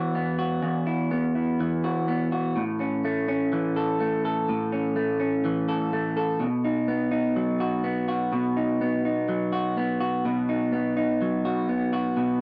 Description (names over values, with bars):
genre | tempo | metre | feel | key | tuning
indie pop | 125 BPM | 4/4 | straight | unclear | A4 = 439 Hz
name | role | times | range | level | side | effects
electric guitar through a small old amp | solo | 0.0-12.4 s | E2 to A4 | -26 LUFS | equal | none
room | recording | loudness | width
moderate spring reverb, RT60 1.6 s, digital ambience | home recording on cassette | -26 LUFS | mono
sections
0.0-12.4 A section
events
none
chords
0.0 Esus2; 2.6 A; 6.4 B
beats
0.15 | 0.64 1.12 1.60 2.08 | 2.56 3.05 3.53 4.01 | 4.49 4.97 5.45 5.93 | 6.41 6.89 7.37 7.85 | 8.33 8.81 9.29 9.77 | 10.25 10.73 11.21 11.69 | 12.18